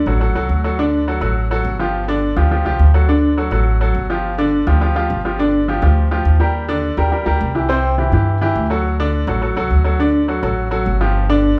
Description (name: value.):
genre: latin, salsa.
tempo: 208 BPM.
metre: 4/4.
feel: straight.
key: unclear.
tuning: A4 = 440 Hz.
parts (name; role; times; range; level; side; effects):
bright upright piano; accompaniment; 0.1-11.5 s; C3 to D5; -20 LUFS; equal; none.
upright bass; bass; 0.1-11.5 s; G1 to G2; -19 LUFS; equal; none.
room: wet large studio reverb, RT60 0.8 s.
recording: band playing live in one room.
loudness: -17 LUFS.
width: mono.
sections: 0.0-5.4 A section; 5.4-11.6 A section.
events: none.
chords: 0.0 D; 4.2 G5; 5.4 Gm7; 6.5 Ebmaj7; 7.7 C; 8.9 D.